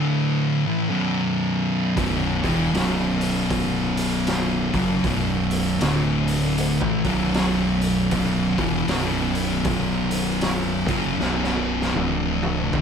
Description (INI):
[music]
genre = stoner and doom metal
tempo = 78 BPM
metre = 4/4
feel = swing 61% on 8ths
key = B minor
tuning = A4 = 438 Hz
[part]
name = thick fuzz guitar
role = riff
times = 0.0-12.8 s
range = B1 to F#3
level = -23 LUFS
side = left 6 dB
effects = distortion
[part]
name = thick fuzz guitar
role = riff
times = 0.0-12.8 s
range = B1 to F#3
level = -24 LUFS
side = right 8 dB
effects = distortion
[part]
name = fuzz fingered electric bass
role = bass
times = 2.0-12.8 s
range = B0 to A1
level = -29 LUFS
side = equal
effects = overdrive
[part]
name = raw garage drum kit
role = drums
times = 2.0-12.8 s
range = hi-hat, kick drum, snare drum, toms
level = -28 LUFS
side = equal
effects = none
[sound]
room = light reverb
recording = band playing live in one room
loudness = -20 LUFS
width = side -7 dB against mid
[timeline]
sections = 0.0-12.8 A section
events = drum fill 11.2-12.8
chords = 0.0 D5; 0.6 B5; 5.8 D5; 6.8 B5; 12.0 D5